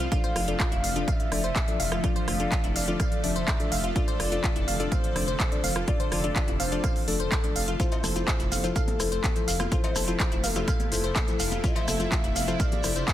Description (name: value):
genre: progressive house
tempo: 125 BPM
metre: 4/4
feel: straight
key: unclear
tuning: A4 = 440 Hz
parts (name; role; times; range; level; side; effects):
- soft octave-layered synth lead; melody; 0.0-13.1 s; A4 to F5; -34 LUFS; left 2 dB; chorus, sidechain pumping, dub echo
- shimmering ambient pad; sustained chords; 0.0-13.1 s; C3 to A4; -36 LUFS; equal; chorus, built-in reverb, phaser, sidechain pumping
- glassy wavetable pluck; arpeggios; 0.0-13.1 s; E4 to F5; -34 LUFS; equal; chorus, sidechain pumping, dub echo
- dark detuned saw bass; bass; 0.0-13.0 s; F1; -31 LUFS; equal; sidechain pumping
- pop drum kit; drums; 0.0-13.1 s; handclaps, hi-hat, rim click; -31 LUFS; equal; sidechain pumping on hats, small room ambience, soft clipping on snare
- deep mellow chord stab; stabs; 0.1-12.9 s; F3 to D5; -34 LUFS; left 3 dB; chorus, sidechain pumping, dub echo
- electronic kick drum; drums; 0.1-13.1 s; none; -27 LUFS; equal; small room ambience
- shekere; percussion; 7.8-13.1 s; none; -38 LUFS; left 2 dB; none
- cowbell, congas and bongos; percussion; 7.9-13.1 s; none; -38 LUFS; left 4 dB; sidechain pumping on perc
room: light reverb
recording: dense, heavily limited modern master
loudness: -24 LUFS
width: side -12 dB against mid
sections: 0.0-13.1 A section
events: none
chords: 0.1 Dm/F; 7.8 Fmaj7